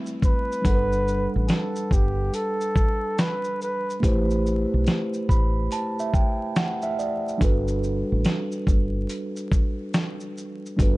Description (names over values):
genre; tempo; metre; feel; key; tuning
lo-fi hip hop; 71 BPM; 4/4; swing 63% on 16ths; G major; A4 = 440 Hz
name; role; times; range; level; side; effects
mellow tine electric piano; accompaniment; 0.0-11.0 s; G3 to B5; -27 LUFS; right 1 dB; slow stereo tremolo, cassette tape, low-pass filter
dusty soul sampler-style drum kit; drums; 0.1-11.0 s; hi-hat, kick drum, shaker, snare drum; -23 LUFS; equal; none
breathy flugelhorn; melody; 0.3-4.0 s; G4 to B4; -28 LUFS; equal; low-pass filter, analog delay
deep dub fingered electric bass; bass; 0.7-11.0 s; G1 to B1; -25 LUFS; equal; none
room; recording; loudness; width
digital ambience; dark, warm production, vinyl crackle, nothing above 10.7 kHz; -21 LUFS; side -20 dB against mid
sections
0.0-11.0 A section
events
none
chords
0.0 Am9; 0.6 Gmaj7; 4.0 Am9; 7.4 Gmaj7